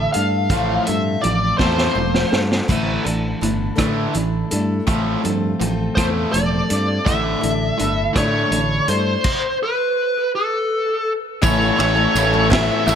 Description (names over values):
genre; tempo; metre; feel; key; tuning
folk rock and heartland rock; 55 BPM (dotted quarters); 6/8; straight; A mixolydian; A4 = 441 Hz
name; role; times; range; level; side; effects
smooth overdriven lead guitar; melody; 0.0-2.4, 6.0-13.0 s; A4 to F5; -20 LUFS; left 1 dB; analog delay
picked steel-string acoustic guitar; accompaniment; 0.0-13.0 s; A2 to A4; -24 LUFS; left 4 dB; none
raw garage guitar; riff; 0.0-13.0 s; A2 to E4; -23 LUFS; right 2 dB; overdrive
fingered electric bass; bass; 0.0-13.0 s; E1 to A2; -22 LUFS; right 1 dB; none
vintage drum kit; drums; 0.1-13.0 s; crash cymbal, hi-hat, kick drum, ride cymbal, rim click, snare drum; -22 LUFS; right 1 dB; none
tonewheel organ; sustained chords; 11.4-13.0 s; A4 to C#6; -28 LUFS; right 2 dB; none
tambourine; percussion; 11.4-13.0 s; none; -31 LUFS; right 8 dB; none
room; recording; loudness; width
light reverb, small room ambience; none; -16 LUFS; side -8 dB against mid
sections
0.0-11.4 A section; 11.4-13.0 B section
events
drum fill 1.6-2.7; stop 9.2-11.4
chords
0.0 Asus4; 0.5 F/A; 2.7 Asus4; 4.9 F/A; 7.1 Asus4; 9.2 N.C.; 11.4 A